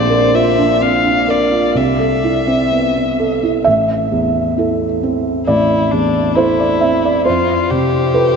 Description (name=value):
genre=neoclassical piano and strings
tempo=63-69 BPM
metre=4/4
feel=rubato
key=unclear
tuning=A4 = 440 Hz
part: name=warm violin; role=melody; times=0.0-8.4 s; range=D4 to F5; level=-17 LUFS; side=left 3 dB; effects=tape echo
part: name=felt-muted upright piano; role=accompaniment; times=0.0-8.4 s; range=A1 to E5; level=-14 LUFS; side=right 2 dB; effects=none
room=wet cathedral reverb, RT60 6.1 s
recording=dreamy mix soaked in reverb, nothing above 7.8 kHz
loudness=-12 LUFS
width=side -6 dB against mid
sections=0.0-3.7 A section; 3.7-8.4 B section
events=none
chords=0.0 Bb; 1.8 C6; 3.7 Am; 7.3 F